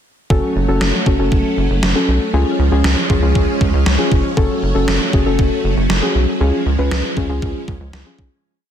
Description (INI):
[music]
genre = synth-pop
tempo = 118 BPM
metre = 4/4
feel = straight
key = F# harmonic minor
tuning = A4 = 439 Hz
[part]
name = muted felt-like synth keys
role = accompaniment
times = 0.3-8.3 s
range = C#4 to B4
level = -20 LUFS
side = left 2 dB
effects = chorus, shimmer reverb
[part]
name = string machine, violins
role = sustained chords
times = 0.3-8.4 s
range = E#3 to C#4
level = -22 LUFS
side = right 2 dB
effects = ensemble chorus, shimmer reverb
[part]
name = rubbery square bass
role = bass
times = 0.3-8.3 s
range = E#1 to C#2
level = -17 LUFS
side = equal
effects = none
[part]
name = gated 80s digital drum machine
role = drums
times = 0.3-8.3 s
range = kick drum, snare drum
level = -18 LUFS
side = equal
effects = gated reverb, gated reverb snare
[sound]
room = light reverb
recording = dense, heavily limited modern master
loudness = -14 LUFS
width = side -9 dB against mid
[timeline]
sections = 0.3-8.4 verse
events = fade-out 6.4-8.4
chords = 0.3 F#m; 2.3 C#; 4.4 F#m; 6.4 C#